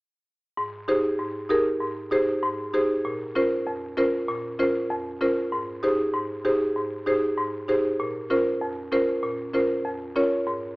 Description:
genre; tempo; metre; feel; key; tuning
dancehall; 97 BPM; 4/4; straight; Ab major; A4 = 439 Hz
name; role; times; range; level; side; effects
buzzing marimba with medium hard mallets; accompaniment; 0.6-10.8 s; F2 to Db5; -23 LUFS; equal; none
room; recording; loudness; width
wet spring reverb, RT60 2.1 s; home recording on cassette, small speaker sound; -23 LUFS; side -22 dB against mid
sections
0.6-10.8 A section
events
none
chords
0.6 Abmaj7; 3.0 Bbmadd9; 5.5 Abmaj7; 8.0 Bbmadd9

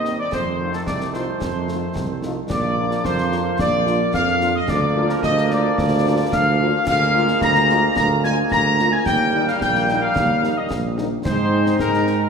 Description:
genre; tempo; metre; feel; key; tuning
military-style march for wind band; 110 BPM; 2/4; straight; Bb major, Eb major from 6.9 s; A4 = 440 Hz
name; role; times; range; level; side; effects
dark trumpet section; melody; 0.0-12.3 s; A4 to Bb5; -24 LUFS; equal; none
clear woodwind section; second line; 0.0-12.3 s; A4 to Bb5; -25 LUFS; left 1 dB; none
mellow hollow piccolo; second line; 0.0-12.3 s; A5 to Bb6; -25 LUFS; left 3 dB; none
bright trombone section; sustained chords; 0.0-12.3 s; Eb3 to Eb4; -27 LUFS; right 2 dB; none
mellow tuba; bass; 0.0-12.3 s; Bb1 to Ab2; -22 LUFS; right 2 dB; none
concert snare drum, concert bass drum and clash cymbals; drums; 0.0-12.2 s; none; -29 LUFS; left 1 dB; none
mellow French horn section; accompaniment; 0.1-12.3 s; G3 to F4; -28 LUFS; left 3 dB; none
room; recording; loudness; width
wet concert hall reverb, RT60 1.9 s; minimal, uncompressed stereo recording; -17 LUFS; side -6 dB against mid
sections
0.0-12.3 A section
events
none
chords
0.3 F7; 2.5 Bb; 4.7 Bb/D; 6.9 Bb7/D; 9.1 Eb; 11.2 Ab

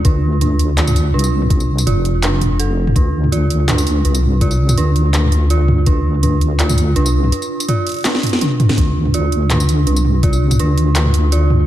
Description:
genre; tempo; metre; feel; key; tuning
half-time drum and bass; 165 BPM; 4/4; swing 53% on 16ths, half-time; D minor; A4 = 440 Hz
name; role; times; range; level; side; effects
dark detuned synth bell; arpeggios; 0.0-11.7 s; D4 to A4; -20 LUFS; right 3 dB; chorus, vintage 12-bit sampler grit, tape echo
deep soft wobble bass; bass; 0.0-11.7 s; F1 to D2; -14 LUFS; left 1 dB; chorus
drum and bass drum kit; drums; 0.0-11.6 s; handclaps, hi-hat, snare drum, tambourine, toms; -19 LUFS; equal; overdrive
electronic kick drum; drums; 0.0-5.9, 8.8-10.3 s; none; -15 LUFS; left 1 dB; none
room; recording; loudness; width
light reverb; none; -13 LUFS; side -13 dB against mid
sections
0.0-11.7 A section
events
break 7.3-8.8; drum fill 8.0-8.8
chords
0.0 D5

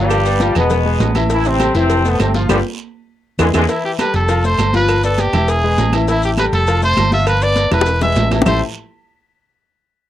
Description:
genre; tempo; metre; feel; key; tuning
latin, salsa; 201 BPM; 4/4; straight; A minor; A4 = 440 Hz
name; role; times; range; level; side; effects
bright trombone section; melody; 0.0-3.6 s; G2 to F4; -18 LUFS; left 1 dB; none
clear concert grand piano; accompaniment; 0.0-8.6 s; E3 to F5; -20 LUFS; left 5 dB; none
hollow-body short-scale fingered electric bass; bass; 0.0-8.6 s; E1 to E2; -17 LUFS; right 1 dB; none
agogo bells and timbales; percussion; 0.1-8.5 s; none; -25 LUFS; right 9 dB; none
claves; percussion; 0.1-8.5 s; none; -28 LUFS; right 12 dB; none
congas; percussion; 0.1-8.5 s; none; -23 LUFS; right 1 dB; none
cowbell and bongos; percussion; 0.1-8.5 s; none; -23 LUFS; left 4 dB; none
guiro; percussion; 0.1-8.5 s; none; -33 LUFS; right 7 dB; none
maracas; percussion; 0.1-8.5 s; none; -34 LUFS; left 11 dB; none
clear trumpet; melody; 3.7-8.6 s; E4 to E5; -18 LUFS; equal; none
room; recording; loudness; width
little or no reverb; dry, close 1970s-style studio recording; -13 LUFS; side -12 dB against mid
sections
0.0-3.7 A section; 3.7-8.5 B section; 8.5-9.7 C section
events
band accent 2.5-3.7; drum fill 3.1-3.7, 7.7-8.5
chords
0.1 G7; 0.7 E; 1.3 Am7; 1.9 Fmaj7; 2.5 G7; 3.1 E7; 3.7 A5; 4.3 F; 4.9 G7; 5.5 E; 6.1 A5; 6.7 F; 7.3 G7; 7.9 E; 8.5 Am7

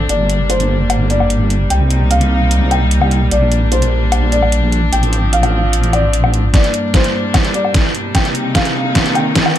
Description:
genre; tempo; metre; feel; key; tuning
heavy wobble dubstep; 149 BPM; 4/4; half-time; G minor; A4 = 440 Hz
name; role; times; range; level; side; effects
rich chamber string section; sustained chords; 0.0-9.6 s; G2 to Eb4; -19 LUFS; equal; sidechain pumping
wobble bass; bass; 0.0-6.5 s; G1 to C2; -14 LUFS; equal; chorus, overdrive
felt-muted upright piano; melody; 0.1-9.6 s; C5 to G5; -20 LUFS; left 1 dB; ping-pong delay
dubstep drum kit; drums; 0.1-9.6 s; hi-hat, snare drum, woodblock; -18 LUFS; left 1 dB; none
electronic kick drum; drums; 6.5-9.4 s; none; -14 LUFS; equal; none
riser; sound effects; 7.6-9.6 s; none; -24 LUFS; equal; none
room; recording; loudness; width
light reverb; dark, warm production, high-pass filter; -12 LUFS; side -11 dB against mid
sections
0.0-6.5 A section; 6.5-9.6 B section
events
build-up 6.5-9.6; drum fill 6.5-9.6; riser 7.6-9.6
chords
0.1 Gm; 1.7 Cm7; 3.3 Gm/Bb; 4.9 Dm7/A; 6.5 Gm; 8.1 Cm7

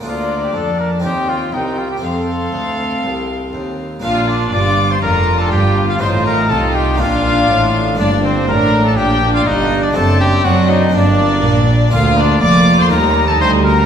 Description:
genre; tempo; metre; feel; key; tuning
classical, baroque-style concerto movement with solo episodes; 122 BPM; 4/4; straight; Bb major; A4 = 439 Hz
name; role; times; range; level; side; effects
rich chamber violin section; second line; 0.0-13.9 s; D4 to G5; -21 LUFS; left 2 dB; none
harpsichord; accompaniment; 0.0-13.9 s; C2 to F4; -22 LUFS; equal; none
warm chamber violin section; melody; 0.1-13.9 s; C5 to D6; -21 LUFS; left 3 dB; none
warm trumpet; melody; 0.1-13.9 s; C4 to D5; -19 LUFS; left 1 dB; none
dark chamber viola section; accompaniment; 0.1-13.9 s; G3 to Eb4; -22 LUFS; equal; none
rich chamber cello section; bass; 0.1-13.9 s; C2 to F#3; -18 LUFS; right 1 dB; none
warm chamber double bass section; bass; 4.0-13.9 s; F1 to F#2; -19 LUFS; right 2 dB; none
room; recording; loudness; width
wet recital hall reverb, RT60 1.7 s; recorded in a church or concert hall; -12 LUFS; side -8 dB against mid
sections
0.0-4.0 A section; 4.0-13.9 B section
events
none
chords
0.0 Bb/D; 1.0 Cm/Eb; 2.0 F; 4.0 Bb; 6.0 F7/A; 7.0 Bb; 8.0 Gm; 10.0 D7/F#; 10.9 Gm; 11.9 Bb/D; 12.9 Eb

